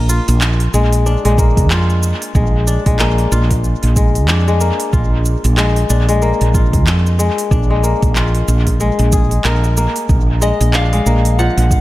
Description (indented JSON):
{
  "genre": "organic downtempo",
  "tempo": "93 BPM",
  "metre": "4/4",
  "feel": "swing 59% on 16ths",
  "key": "unclear",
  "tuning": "A4 = 440 Hz",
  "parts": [
    { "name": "kora", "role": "arpeggios", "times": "0.0-11.8 s", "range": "F3 to Bb4", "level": "-18 LUFS", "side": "left 3 dB", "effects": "dub echo" },
    { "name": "woody fretless electric bass", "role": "bass", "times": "0.0-11.8 s", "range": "Bb1 to F2", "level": "-14 LUFS", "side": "equal", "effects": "none" },
    { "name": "organic electronic drum kit", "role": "drums", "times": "0.1-11.8 s", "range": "handclaps, hi-hat, shaker", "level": "-22 LUFS", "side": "right 1 dB", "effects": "dub echo" },
    { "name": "electronic kick drum", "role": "drums", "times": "1.4-11.8 s", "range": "none", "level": "-16 LUFS", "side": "equal", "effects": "none" },
    { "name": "electric slide guitar", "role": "melody", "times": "10.4-11.8 s", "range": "D#5 to F#5", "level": "-20 LUFS", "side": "left 1 dB", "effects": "dub echo" }
  ],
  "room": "light reverb, digital ambience",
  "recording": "echo-heavy mix",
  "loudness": "-12 LUFS",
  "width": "side -16 dB against mid",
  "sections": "0.0-11.8 A section",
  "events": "none",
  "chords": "0.0 Bb7"
}